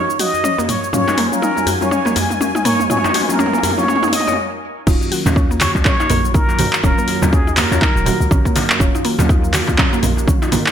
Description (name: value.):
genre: afro house.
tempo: 122 BPM.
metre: 4/4.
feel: swing 58% on 16ths.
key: Eb minor.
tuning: A4 = 440 Hz.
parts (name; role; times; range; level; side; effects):
trumpet with plunger mute; melody; 0.0-8.6 s; Ab4 to Eb5; -21 LUFS; equal; dub echo.
warm analog pad; sustained chords; 0.0-10.7 s; Eb3 to Ab5; -25 LUFS; right 1 dB; chorus, sidechain pumping.
mallet-like synth pluck; arpeggios; 0.0-10.7 s; Bb3 to Eb5; -22 LUFS; equal; chorus, sidechain pumping, dub echo.
house drum kit; drums; 0.1-10.7 s; cabasa, crash cymbal, handclaps, hi-hat, toms; -20 LUFS; left 1 dB; studio reverb.
djembe; percussion; 0.3-10.6 s; none; -26 LUFS; left 1 dB; none.
deep mellow chord stab; stabs; 0.9-9.8 s; Gb3 to F4; -25 LUFS; left 3 dB; chorus, phaser, cassette tape, sidechain pumping, dub echo.
warm 808-style bass; bass; 4.9-10.6 s; Eb1 to Eb2; -20 LUFS; equal; sidechain pumping.
electronic kick drum; drums; 4.9-10.4 s; none; -16 LUFS; equal; studio reverb.
congas; percussion; 5.3-10.6 s; none; -23 LUFS; right 4 dB; none.
room: light reverb, digital ambience.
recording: none.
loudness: -13 LUFS.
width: side -9 dB against mid.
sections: 0.0-4.9 A section; 4.9-10.7 B section.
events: build-up 0.0-4.9; drum fill 0.0-4.4; filter sweep on analog synth pad 0.0-4.9; stop 4.4-4.9; drop 4.9-10.7.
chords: 0.0 Ebm7.